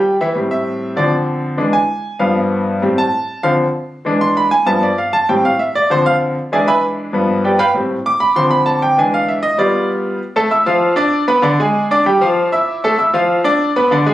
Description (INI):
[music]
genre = latin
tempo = 195 BPM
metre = 4/4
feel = straight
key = A minor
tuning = A4 = 439 Hz
[part]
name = bright grand piano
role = solo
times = 0.0-14.1 s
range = G2 to E6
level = -13 LUFS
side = equal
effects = none
[sound]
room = moderate studio reverb, RT60 0.9 s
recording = recorded on a phone in the room, club reverb, compression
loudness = -13 LUFS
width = side -14 dB against mid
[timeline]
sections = 0.4-10.2 A section; 10.2-14.1 B section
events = grand piano solo 0.4-10.2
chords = 0.4 Am7; 1.0 Dm7; 1.6 E7; 2.2 G7; 2.8 Am7; 3.4 Dm7; 4.1 E7; 4.7 G7; 5.3 Am7; 5.9 Dm7; 6.5 E7; 7.1 G7; 7.7 Am7; 8.4 Dm7; 9.0 E7; 9.6 G7; 10.2 A5; 10.8 Dm; 11.4 N.C.; 12.1 Fsus2; 12.7 A5; 13.3 Dm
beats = 0.05 | 0.36 0.67 0.97 1.28 | 1.59 1.90 2.21 2.51 | 2.82 3.13 3.44 3.75 | 4.05 4.36 4.67 4.98 | 5.28 5.59 5.90 6.21 | 6.51 6.82 7.13 7.44 | 7.75 8.05 8.36 8.67 | 8.98 9.29 9.59 9.90 | 10.21 10.52 10.82 11.13 | 11.44 11.75 12.06 12.37 | 12.68 12.98 13.29 13.60 | 13.91